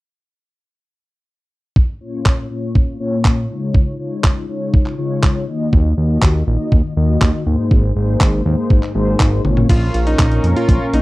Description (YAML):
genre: italo disco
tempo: 121 BPM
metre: 4/4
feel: straight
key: Bb minor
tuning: A4 = 436 Hz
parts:
  - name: electronic kick drum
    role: drums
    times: 1.8-10.8 s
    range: none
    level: -13 LUFS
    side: equal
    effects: studio ambience
  - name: mellow synth brass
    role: stabs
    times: 2.0-11.0 s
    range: Ab2 to Eb5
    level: -20 LUFS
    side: left 2 dB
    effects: chorus, tape echo
  - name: dusty soul sampler-style drum kit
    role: drums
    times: 2.3-11.0 s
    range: crash cymbal, handclaps, hi-hat, toms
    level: -21 LUFS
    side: equal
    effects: studio ambience
  - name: fat analog bass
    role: bass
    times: 5.7-11.0 s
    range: Ab1 to F2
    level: -17 LUFS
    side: equal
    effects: none
  - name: bright electric grand piano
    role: melody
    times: 9.7-11.0 s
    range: Eb4 to F4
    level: -21 LUFS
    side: equal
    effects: tape echo
  - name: warm analog pad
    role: sustained chords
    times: 9.7-11.0 s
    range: Db4 to Db6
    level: -22 LUFS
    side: right 1 dB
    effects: chorus, vintage 12-bit sampler grit
room: light reverb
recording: dry, close 1970s-style studio recording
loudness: -14 LUFS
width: side -19 dB against mid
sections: 1.8-9.7 A section; 9.7-11.0 B section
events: filter sweep on analog polysynth 1.8-9.7; drum fill 9.4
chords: 1.8 Bbm; 3.7 Dbadd9; 5.7 Ebm; 7.7 Abadd9; 9.7 Bbm